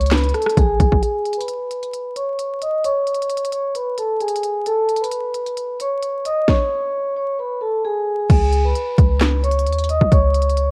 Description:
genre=hip hop, trap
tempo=132 BPM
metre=4/4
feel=half-time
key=unclear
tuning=A4 = 440 Hz
part: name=vibraphone with soft mallets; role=melody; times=0.0-10.7 s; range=G#4 to D#6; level=-22 LUFS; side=equal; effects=low-pass filter
part: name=clean 808-style bass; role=bass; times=0.0-1.0, 8.3-10.7 s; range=A1 to D#2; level=-20 LUFS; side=equal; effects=none
part: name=trap drum kit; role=drums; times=0.0-10.7 s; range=crash cymbal, handclaps, hi-hat, kick drum, rim click, snare drum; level=-22 LUFS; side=equal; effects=none
room=light reverb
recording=worn, warbling old tape, cassette tape, vinyl crackle, warbly pitch drift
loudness=-19 LUFS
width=mono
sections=0.0-1.0 A section; 1.0-8.3 B section; 8.3-10.7 C section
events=filter sweep on vibraphone 1.0-8.3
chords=0.0 A; 1.0 C#5; 4.7 Aadd9; 6.5 A; 8.3 C#sus2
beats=0.12 0.57 | 1.02 1.48 1.93 2.39 | 2.84 3.30 3.75 4.21 | 4.66 5.12 5.57 6.03 | 6.48 6.93 7.39 7.84 | 8.30 8.75 9.21 9.66 | 10.12 10.57

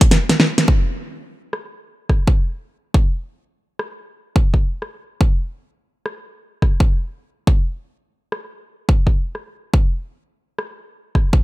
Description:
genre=glitch hop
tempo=106 BPM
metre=4/4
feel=swing 64% on 16ths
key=none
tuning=none
part: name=electronic kick drum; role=drums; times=0.0-11.4 s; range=none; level=-15 LUFS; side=equal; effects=none
part: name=pop drum kit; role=drums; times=0.0-11.3 s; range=hi-hat, rim click, snare drum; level=-18 LUFS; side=equal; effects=none
room=digital ambience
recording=none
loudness=-16 LUFS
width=side -19 dB against mid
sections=0.7-11.4 A section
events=drum fill 0.0-0.7; band accent 0.5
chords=none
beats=0.11 | 0.68 1.25 1.81 2.38 | 2.94 3.51 4.08 4.64 | 5.21 5.77 6.34 6.91 | 7.47 8.04 8.60 9.17 | 9.74 10.30 10.87

